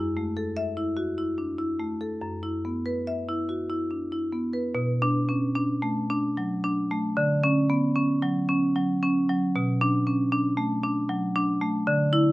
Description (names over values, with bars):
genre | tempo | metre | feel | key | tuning
classical, contemporary piece for solo marimba | 70-78 BPM | 3/4 | rubato | B minor | A4 = 436 Hz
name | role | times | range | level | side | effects
marimba with medium hard mallets | solo | 0.0-12.3 s | F#2 to E5 | -23 LUFS | equal | none
room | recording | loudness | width
light reverb | none | -24 LUFS | side -19 dB against mid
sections
0.0-4.7 A section; 4.7-12.3 B section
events
none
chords
0.0 F#m7; 2.2 F#7sus4; 4.7 Bm7; 7.2 Dmaj7; 9.5 Bm7